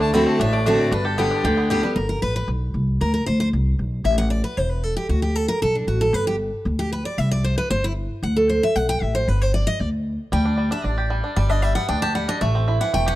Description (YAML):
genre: bluegrass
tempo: 230 BPM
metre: 4/4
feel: straight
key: G major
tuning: A4 = 441 Hz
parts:
  - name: bluegrass banjo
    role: melody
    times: 0.0-2.0, 10.3-13.2 s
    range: E3 to G4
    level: -25 LUFS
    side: right 2 dB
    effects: slapback echo
  - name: clear fiddle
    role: second line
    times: 0.0-1.7 s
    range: G4 to B5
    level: -29 LUFS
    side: left 4 dB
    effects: none
  - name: picked steel-string acoustic guitar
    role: accompaniment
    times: 0.0-13.2 s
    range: G2 to A5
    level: -22 LUFS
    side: equal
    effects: none
  - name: upright bass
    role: bass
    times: 0.0-13.2 s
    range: E1 to D2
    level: -22 LUFS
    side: equal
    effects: none
room: small room reverb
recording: dry, close 1970s-style studio recording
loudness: -19 LUFS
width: side -15 dB against mid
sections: 0.0-2.0 A section; 2.0-13.2 A section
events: fiddle solo 0.0-2.0; steel-string acoustic guitar solo 2.0-13.2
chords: 0.0 D7; 0.9 G; 3.0 Bmmaj7; 4.1 A5; 5.1 D5; 6.1 G5; 7.2 C5; 8.2 D5; 9.3 G5; 10.3 Dsus4; 11.4 G; 12.4 Am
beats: 0.14 0.40 0.66 | 0.92 1.18 1.44 1.71 | 1.97 2.23 2.49 2.75 | 3.01 3.27 3.53 3.79 | 4.05 4.31 4.58 4.84 | 5.10 5.36 5.62 5.88 | 6.14 6.40 6.66 6.92 | 7.19 7.45 7.71 7.97 | 8.23 8.49 8.75 9.02 | 9.28 9.54 9.80 10.06 | 10.32 10.58 10.85 11.11 | 11.37 11.63 11.89 12.15 | 12.41 12.68 12.94